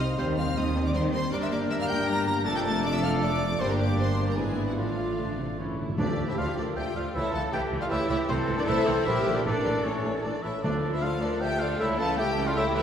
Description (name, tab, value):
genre	quick classical-period movement for symphony orchestra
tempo	156 BPM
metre	3/4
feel	rubato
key	D minor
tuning	A4 = 440 Hz
part	rich studio violin section	melody	0.0-12.8 s	C5 to Bb6	-36 LUFS	left 3 dB	none
part	mellow hollow concert flute	second line	0.0-12.8 s	F4 to Bb5	-34 LUFS	left 1 dB	none
part	rich studio violin section	second line	0.0-12.8 s	C4 to Bb5	-39 LUFS	left 2 dB	none
part	clear studio viola section	accompaniment	0.0-12.8 s	D3 to G4	-35 LUFS	left 1 dB	none
part	mellow French horn section	sustained chords	0.0-12.8 s	G3 to A4	-34 LUFS	left 2 dB	none
part	dark trumpet	stabs	0.0-12.8 s	C4 to C5	-34 LUFS	right 1 dB	none
part	rich studio cello section	bass	0.0-12.8 s	F2 to A4	-34 LUFS	right 1 dB	none
part	rich studio double bass section	bass	0.0-12.8 s	F1 to Eb2	-32 LUFS	right 2 dB	none
part	mellow clarinet	second line	0.2-12.8 s	C4 to Bb4	-38 LUFS	left 2 dB	none
part	warm oboe	second line	0.2-12.8 s	Bb4 to A5	-36 LUFS	equal	none
part	mellow bassoon	accompaniment	0.2-12.8 s	E3 to B3	-38 LUFS	equal	none
part	timpani	percussion	5.6-6.5, 9.5-11.2 s	A2 to D3	-34 LUFS	equal	none
room	wet concert hall reverb, RT60 2.3 s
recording	heard from further back in the room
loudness	-24 LUFS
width	side -8 dB against mid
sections	0.0-6.0 A section; 6.0-12.8 B section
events	timpani fill 5.6-6.0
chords	0.2 Cm/Eb; 1.3 Gm; 2.5 Dm/F; 3.6 Gm; 4.4 E7/G#; 4.8 Dm/A; 5.6 A; 6.0 Dm; 7.2 A/C#; 8.3 Am/C; 9.1 Gm; 9.5 A; 10.6 Dm; 11.8 A/C#